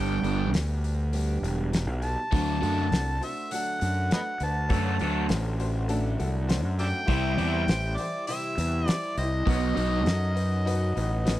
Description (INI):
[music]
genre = classic rock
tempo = 101 BPM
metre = 4/4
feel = straight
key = unclear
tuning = A4 = 439 Hz
[part]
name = overdriven harmonica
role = melody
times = 0.0-11.4 s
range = B4 to A5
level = -31 LUFS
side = equal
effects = slapback echo
[part]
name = fingerpicked twelve-string acoustic guitar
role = accompaniment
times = 0.0-11.4 s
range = G2 to G4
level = -37 LUFS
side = right 2 dB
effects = none
[part]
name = raw garage guitar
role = riff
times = 0.0-10.0 s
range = G2 to E4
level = -28 LUFS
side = right 1 dB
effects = overdrive, phaser
[part]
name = fuzz fingered electric bass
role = bass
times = 0.0-11.4 s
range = E1 to F#2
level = -27 LUFS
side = equal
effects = overdrive
[part]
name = damped 70s drum kit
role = drums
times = 0.2-11.4 s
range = hi-hat, kick drum, snare drum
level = -29 LUFS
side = equal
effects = none
[part]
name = tack piano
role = accompaniment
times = 2.3-11.4 s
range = D4 to D5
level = -37 LUFS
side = left 4 dB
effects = none
[sound]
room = little or no reverb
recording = dry, close 1970s-style studio recording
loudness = -24 LUFS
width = side -14 dB against mid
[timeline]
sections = 0.0-11.4 A section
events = none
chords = 0.0 G; 2.3 D; 7.1 C; 9.5 B